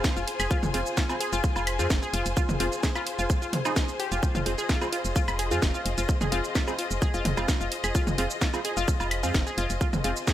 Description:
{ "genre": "minimal techno", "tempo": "129 BPM", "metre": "4/4", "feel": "straight", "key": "F minor", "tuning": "A4 = 440 Hz", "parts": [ { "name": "wavetable chord stab", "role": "stabs", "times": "0.0-10.1 s", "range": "C4 to Ab4", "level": "-35 LUFS", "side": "right 3 dB", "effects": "tape echo" }, { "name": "electronic kick drum", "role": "drums", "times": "0.0-10.3 s", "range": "none", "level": "-26 LUFS", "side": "equal", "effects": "studio reverb" }, { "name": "garage drum kit", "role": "drums", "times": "0.0-10.3 s", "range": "hi-hat, shaker, snare drum", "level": "-32 LUFS", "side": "right 1 dB", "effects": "studio reverb" }, { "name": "rich studio string section", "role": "texture", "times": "0.0-10.3 s", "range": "F4 to Ab5", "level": "-34 LUFS", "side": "left 3 dB", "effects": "sidechain pumping" }, { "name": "resonant blip pluck", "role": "riff", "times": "0.2-10.3 s", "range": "Eb4 to Ab4", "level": "-32 LUFS", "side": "left 1 dB", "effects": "chorus, sidechain pumping, tape echo" }, { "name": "woody FM bass", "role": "bass", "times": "0.2-10.1 s", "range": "F1 to F2", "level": "-31 LUFS", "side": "equal", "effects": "sidechain pumping" }, { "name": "electronic woodblock and toms", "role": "percussion", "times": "0.4-10.0 s", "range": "none", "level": "-32 LUFS", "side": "equal", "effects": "studio reverb" } ], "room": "light reverb", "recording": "none", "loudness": "-24 LUFS", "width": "side -12 dB against mid", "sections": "0.0-10.3 A section", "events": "none", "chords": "0.0 Fm" }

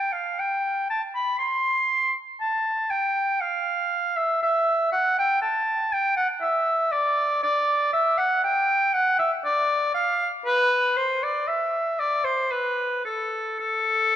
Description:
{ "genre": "classical, baroque-style fantasia for unaccompanied oboe", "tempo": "59 BPM", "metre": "3/4", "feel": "rubato", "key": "unclear", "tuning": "A4 = 440 Hz", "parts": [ { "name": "clear oboe", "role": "solo", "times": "0.0-14.2 s", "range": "A4 to C6", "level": "-21 LUFS", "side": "equal", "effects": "none" } ], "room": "moderate scoring stage reverb, RT60 2.0 s", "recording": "dark, warm production", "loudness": "-21 LUFS", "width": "side -11 dB against mid", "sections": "0.0-14.2 A section", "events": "none", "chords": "none" }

